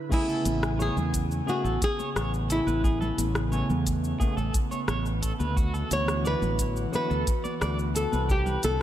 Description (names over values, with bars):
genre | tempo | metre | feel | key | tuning
sunset chillout | 88 BPM | 4/4 | straight | A major | A4 = 436 Hz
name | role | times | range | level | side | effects
airy breathy pad | sustained chords | 0.0-8.8 s | C#3 to G#5 | -34 LUFS | right 1 dB | chorus
flamenco guitar | melody | 0.1-8.8 s | E4 to C#5 | -30 LUFS | left 1 dB | digital delay
overdriven tine electric piano | accompaniment | 0.1-7.1 s | C#3 to G#5 | -34 LUFS | equal | auto-pan, tape echo
electric guitar at the edge of break-up | arpeggios | 0.1-8.6 s | F#4 to D5 | -37 LUFS | right 3 dB | tremolo, tape echo
electronic kick drum | drums | 0.1-8.4 s | none | -27 LUFS | equal | overdrive
smooth R&B drum kit | drums | 0.1-8.8 s | crash cymbal, hi-hat, rim click, shaker | -35 LUFS | left 1 dB | none
modern bright fingered electric bass | bass | 0.5-8.8 s | A1 to E2 | -28 LUFS | equal | none
congas | percussion | 0.5-8.8 s | none | -36 LUFS | left 3 dB | none
room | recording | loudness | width
light reverb, digital ambience | none | -24 LUFS | side -12 dB against mid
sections
0.1-8.8 A section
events
none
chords
0.1 Amaj9; 5.6 D69; 8.3 Cmaj9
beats
| 0.12 0.80 1.48 2.16 | 2.84 3.53 4.21 4.89 | 5.57 6.25 6.93 7.62 | 8.30